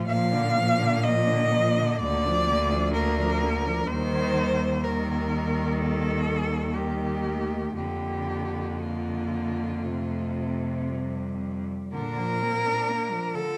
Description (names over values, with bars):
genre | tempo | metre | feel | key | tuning
classical, lyrical piece for cello ensemble | 56-65 BPM | 4/4 | rubato | Bb major | A4 = 440 Hz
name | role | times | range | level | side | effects
rich cello | melody | 0.0-13.6 s | C4 to F5 | -31 LUFS | equal | none
warm cello | second line | 0.0-13.6 s | G3 to Bb4 | -33 LUFS | equal | none
warm cello | accompaniment | 0.0-13.6 s | C3 to D4 | -34 LUFS | equal | none
clear cello | bass | 0.0-12.7 s | D2 to Bb2 | -31 LUFS | equal | none
room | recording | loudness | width
moderate recital hall reverb, RT60 1.3 s | none | -26 LUFS | mono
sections
0.0-11.9 A section; 11.9-13.6 B section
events
none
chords
0.1 Bb; 2.0 Bb/D; 3.9 Eb; 7.8 Bb/F; 9.8 F; 11.9 Bb